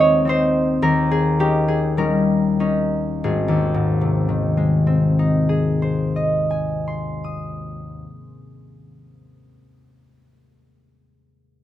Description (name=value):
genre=classical, solo harp piece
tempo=45-57 BPM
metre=4/4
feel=rubato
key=Ab major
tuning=A4 = 440 Hz
part: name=concert harp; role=solo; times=0.0-9.6 s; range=Ab1 to Eb6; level=-17 LUFS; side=left 1 dB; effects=none
room=light reverb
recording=minimal, uncompressed stereo recording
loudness=-17 LUFS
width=side -12 dB against mid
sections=0.0-3.2 A section; 3.2-8.2 B section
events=slowing down 0.0-3.2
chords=0.0 Ab/Eb; 0.8 Eb7; 3.2 Ab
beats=0.82 1.98 | 3.25 4.46 5.68 6.92